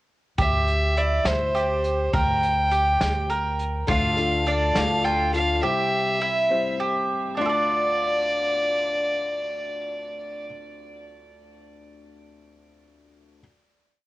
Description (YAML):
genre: indie folk with a building arrangement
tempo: 69 BPM (dotted quarters)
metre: 6/8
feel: straight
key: D minor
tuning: A4 = 440 Hz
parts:
  - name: warm fiddle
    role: melody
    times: 0.4-10.4 s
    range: C5 to G5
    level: -24 LUFS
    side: equal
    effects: cassette tape, tape echo
  - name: mandolin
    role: arpeggios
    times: 0.4-10.6 s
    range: D4 to D5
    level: -27 LUFS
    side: right 2 dB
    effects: cassette tape
  - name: upright bass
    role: bass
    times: 0.4-5.6 s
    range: D2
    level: -26 LUFS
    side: equal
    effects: none
  - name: vintage brush drum kit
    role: drums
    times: 0.4-5.5 s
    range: hi-hat, kick drum, snare drum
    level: -28 LUFS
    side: equal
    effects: cassette tape
  - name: felt-muted upright piano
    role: accompaniment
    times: 3.9-13.4 s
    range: C2 to D5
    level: -32 LUFS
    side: left 4 dB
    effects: cassette tape
  - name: picked twelve-string acoustic guitar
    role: accompaniment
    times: 3.9-5.6 s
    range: D3 to A4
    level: -28 LUFS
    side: left 4 dB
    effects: cassette tape
room: little or no reverb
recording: home recording on cassette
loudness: -21 LUFS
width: side -17 dB against mid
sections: 0.4-7.4 pre-chorus; 7.4-10.9 final chord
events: none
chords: 0.4 C/D; 2.1 Gm/D; 3.9 Dm; 5.6 C; 7.4 Dm